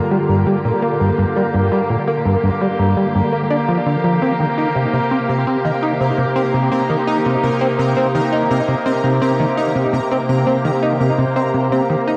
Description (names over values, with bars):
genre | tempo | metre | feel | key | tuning
ambient | 84 BPM | 4/4 | straight | C minor | A4 = 441 Hz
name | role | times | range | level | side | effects
evolving wavetable pad | sustained chords | 0.0-12.2 s | C3 to G4 | -22 LUFS | equal | chorus, built-in reverb
pulsing gated texture | texture | 0.0-12.2 s | Bb4 to Bb5 | -27 LUFS | equal | chorus, built-in reverb
warbly dusty pluck | arpeggios | 0.1-12.2 s | none | barely audible | none | none
plucky analog bass | riff | 0.1-12.2 s | G2 to Eb4 | -20 LUFS | equal | subtle chorus, analog delay
room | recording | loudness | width
wet spring reverb, RT60 2.6 s | home recording on cassette | -17 LUFS | mono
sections
0.0-12.2 A section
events
none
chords
0.0 Gm7; 4.2 Cm7